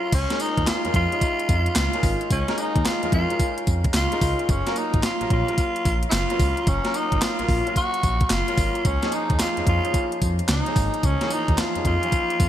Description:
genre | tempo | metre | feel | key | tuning
R&B, new jack swing | 110 BPM | 4/4 | swing 64% on 16ths | Db major | A4 = 439 Hz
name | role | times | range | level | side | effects
growling tenor saxophone | melody | 0.0-12.5 s | Db4 to Gb4 | -24 LUFS | left 1 dB | none
clear concert grand piano | accompaniment | 0.0-12.5 s | Fb3 to F5 | -30 LUFS | equal | wide subtle chorus
smooth gliding synth bass | bass | 0.1-12.5 s | Gb1 to F2 | -25 LUFS | equal | none
clean 12-bit digital drum machine | drums | 0.1-12.5 s | crash cymbal, handclaps, hi-hat, kick drum, snare drum, tambourine | -24 LUFS | equal | overdrive, gated reverb
room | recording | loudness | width
moderate lush hall reverb, RT60 1.9 s, digital ambience | bright 1980s-style digital production | -20 LUFS | side -11 dB against mid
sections
0.1-12.5 A section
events
none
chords
0.1 Db69; 4.5 Gbmaj7; 8.9 Db69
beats
| 0.12 0.67 1.22 1.76 | 2.31 2.85 3.40 3.94 | 4.49 5.03 5.58 6.12 | 6.67 7.21 7.76 8.31 | 8.85 9.40 9.94 10.49 | 11.03 11.58 12.12

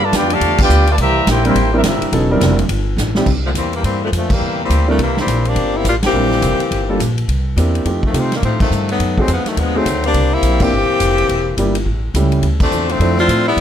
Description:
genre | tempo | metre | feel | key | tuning
jazz, big band swing | 210 BPM | 4/4 | swing 61% on 8ths | C major, C mixolydian from 3.3 s | A4 = 440 Hz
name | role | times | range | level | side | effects
warm trumpet section | melody | 0.0-2.1 s | C4 to Bb5 | -16 LUFS | left 1 dB | none
brilliant trombone section | second line | 0.0-2.1 s | D3 to G4 | -21 LUFS | right 2 dB | none
upright bass | bass | 0.0-13.6 s | E1 to C3 | -17 LUFS | equal | none
swinging big-band drum kit | drums | 0.1-13.6 s | crash cymbal, hi-hat, kick drum, ride cymbal, snare drum | -21 LUFS | equal | none
warm concert grand piano | accompaniment | 1.4-13.4 s | F3 to Bb4 | -19 LUFS | right 1 dB | none
clear saxophone section | melody | 3.5-13.6 s | Bb2 to G4 | -17 LUFS | left 3 dB | none
room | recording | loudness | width
light reverb | close, detailed microphones | -13 LUFS | side -9 dB against mid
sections
0.0-3.3 A section; 3.3-13.6 B section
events
band accent 0.6, 4.3, 6.0, 8.6, 10.6, 12.6; drum fill 3.0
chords
0.0 G7; 1.0 C7; 2.7 G5; 3.3 C7; 6.7 Gm7; 7.3 C7; 7.9 F7; 9.0 F#dim7; 10.1 C7; 11.3 Em7b5; 11.9 A7; 12.4 Dm7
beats
0.13 0.41 0.70 | 0.98 1.27 1.55 1.84 | 2.13 2.41 2.70 2.98 | 3.27 3.56 3.84 4.13 | 4.42 4.70 4.99 5.28 | 5.56 5.85 6.14 6.42 | 6.71 7.00 7.28 7.57 | 7.86 8.14 8.43 8.71 | 9.00 9.29 9.57 9.86 | 10.14 10.43 10.72 11.00 | 11.29 11.57 11.86 12.14 | 12.43 12.72 13.00 13.29 | 13.57

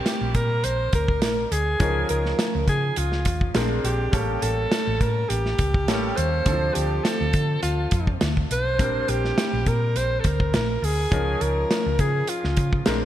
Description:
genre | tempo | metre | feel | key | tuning
polished 1980s jazz-funk pop | 103 BPM | 4/4 | swing 54% on 16ths | Bb major | A4 = 443 Hz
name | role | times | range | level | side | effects
warm alto saxophone | melody | 0.0-12.9 s | F4 to C5 | -26 LUFS | right 1 dB | none
clear grand piano | accompaniment | 0.0-13.1 s | Eb3 to Bb4 | -30 LUFS | left 1 dB | lush chorus
modern studio drum kit | drums | 0.1-13.0 s | hi-hat, kick drum, snare drum | -25 LUFS | equal | none
hollow-body short-scale fingered electric bass | bass | 0.2-13.1 s | A1 to D3 | -25 LUFS | equal | none
room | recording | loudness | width
moderate lush hall reverb, RT60 1.8 s, small room ambience | bright 1980s-style digital production | -20 LUFS | side -12 dB against mid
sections
0.0-13.1 A section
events
none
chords
0.0 Bb69; 1.8 Db69; 3.6 Bb9; 4.1 A7b9; 6.5 Dm7; 8.8 Bb69; 11.1 Db69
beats
0.06 0.64 1.22 | 1.80 2.39 2.97 3.55 | 4.13 4.72 5.30 5.88 | 6.46 7.04 7.63 8.21 | 8.79 9.37 9.95 10.54 | 11.12 11.70 12.28 12.86

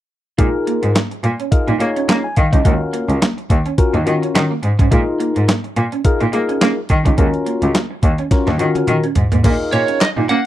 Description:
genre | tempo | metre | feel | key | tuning
early-eighties boogie funk | 106 BPM | 4/4 | swing 56% on 16ths | unclear | A4 = 440 Hz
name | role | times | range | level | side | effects
bright tine electric piano | accompaniment | 0.4-10.1 s | Db4 to Bb5 | -20 LUFS | left 3 dB | phaser
electric guitar at the edge of break-up | riff | 0.4-10.4 s | Ab3 to Eb4 | -24 LUFS | right 8 dB | ensemble chorus
bright cello | bass | 0.4-10.4 s | Db2 to Bb3 | -18 LUFS | equal | none
clean 12-bit digital drum machine | drums | 0.4-10.4 s | crash cymbal, handclaps, hi-hat, kick drum, snare drum, toms | -16 LUFS | equal | none
lightly driven lead guitar | melody | 9.7-10.5 s | Db5 to Gb5 | -18 LUFS | right 5 dB | slapback echo
group handclap | percussion | 10.0-10.2 s | none | -25 LUFS | left 11 dB | none
room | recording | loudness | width
little or no reverb | dry, close 1970s-style studio recording | -14 LUFS | side -13 dB against mid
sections
0.4-9.4 A section; 9.4-10.5 B section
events
drum fill 8.3-9.4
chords
0.4 Bb7sus4; 2.7 Ebm9; 4.9 Bb7sus4; 7.2 Ebm9; 9.4 Bb7sus4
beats
| 0.39 0.95 1.52 2.08 | 2.65 3.22 3.78 4.35 | 4.92 5.48 6.05 6.61 | 7.18 7.75 8.31 8.88 | 9.44 10.01

